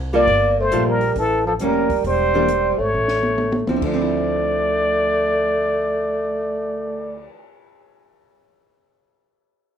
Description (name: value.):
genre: jazz, small-group swing and bop.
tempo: 135 BPM.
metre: 4/4.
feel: swing 66% on 8ths.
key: D minor.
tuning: A4 = 441 Hz.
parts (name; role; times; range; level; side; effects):
upright bass; bass; 0.0-7.3 s; E1 to D2; -28 LUFS; equal; none.
breathy tenor saxophone; second line; 0.1-7.3 s; E3 to Bb3; -23 LUFS; right 3 dB; none.
archtop guitar, miked and amplified; accompaniment; 0.1-7.5 s; D3 to A4; -23 LUFS; equal; none.
trumpet with plunger mute; melody; 0.2-7.3 s; A4 to D5; -20 LUFS; left 2 dB; none.
compact cocktail drum kit; drums; 0.3-7.3 s; crash cymbal, cymbal swell, hi-hat, kick drum, snare drum, toms; -29 LUFS; left 1 dB; none.
room: moderate studio reverb, RT60 0.8 s.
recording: none.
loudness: -17 LUFS.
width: side -8 dB against mid.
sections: 0.3-3.8 A section; 3.8-7.4 B section.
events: drum fill 2.9-3.8.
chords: 0.3 Gm9; 1.2 A7b9; 2.0 Em7b5; 2.9 A; 3.8 Dm9.